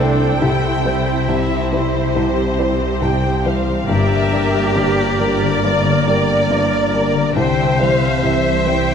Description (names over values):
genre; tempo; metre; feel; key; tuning
cinematic, emotional film score for orchestra; 69 BPM; 4/4; rubato; unclear; A4 = 440 Hz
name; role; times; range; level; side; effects
warm studio violin section; melody; 0.0-8.9 s; C5 to E5; -27 LUFS; left 5 dB; none
warm studio violin section; second line; 0.0-8.9 s; Bb4 to G5; -24 LUFS; left 2 dB; none
felt-muted upright piano; accompaniment; 0.0-8.9 s; G1 to C5; -20 LUFS; left 1 dB; none
rich studio viola section; accompaniment; 0.0-8.9 s; Bb3 to C5; -24 LUFS; right 2 dB; none
concert harp; arpeggios; 0.0-8.9 s; G2 to D5; -22 LUFS; left 6 dB; none
warm studio cello section; bass; 0.0-8.9 s; D4 to D5; -21 LUFS; right 2 dB; none
warm studio double bass section; bass; 0.0-8.9 s; G1 to C2; -23 LUFS; right 3 dB; none
room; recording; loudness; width
moderate scoring stage reverb, RT60 1.7 s; none; -14 LUFS; side -7 dB against mid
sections
0.0-8.9 A section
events
none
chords
0.4 C; 3.9 Gm; 7.4 C